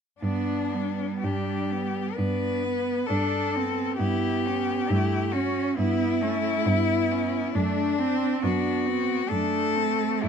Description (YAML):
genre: classical, lyrical piece for cello ensemble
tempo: 56-69 BPM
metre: 4/4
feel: rubato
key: G major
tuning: A4 = 439 Hz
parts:
  - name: rich cello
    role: melody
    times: 0.2-10.3 s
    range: D4 to B4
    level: -28 LUFS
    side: left 8 dB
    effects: none
  - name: rich cello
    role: second line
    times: 0.2-10.3 s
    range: G3 to D4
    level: -28 LUFS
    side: right 10 dB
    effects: none
  - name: rich cello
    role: accompaniment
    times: 0.2-10.3 s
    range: B3 to E4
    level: -31 LUFS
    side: left 3 dB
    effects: none
  - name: rich cello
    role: bass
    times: 0.2-10.3 s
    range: F#2 to G2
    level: -30 LUFS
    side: right 1 dB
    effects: none
room: light reverb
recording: dark, warm production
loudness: -23 LUFS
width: side -7 dB against mid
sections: 0.2-10.3 A section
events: none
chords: 0.2 G; 4.0 A9/G; 7.5 D7/F#